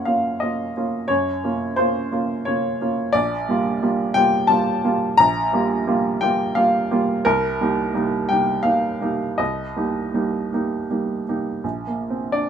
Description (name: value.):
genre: neoclassical minimalist piano.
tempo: 79-89 BPM.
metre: 3/4.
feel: rubato.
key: unclear.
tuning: A4 = 440 Hz.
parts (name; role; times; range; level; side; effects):
clear upright piano; solo; 0.0-12.5 s; Bb1 to Bb5; -19 LUFS; equal; none.
room: moderate studio reverb, RT60 0.5 s.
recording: minimal, uncompressed stereo recording.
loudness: -19 LUFS.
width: side -8 dB against mid.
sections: 0.0-11.6 A section.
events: none.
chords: 0.0 Gbmaj7; 3.1 Bb6; 7.3 Cm7; 11.6 Bbadd9.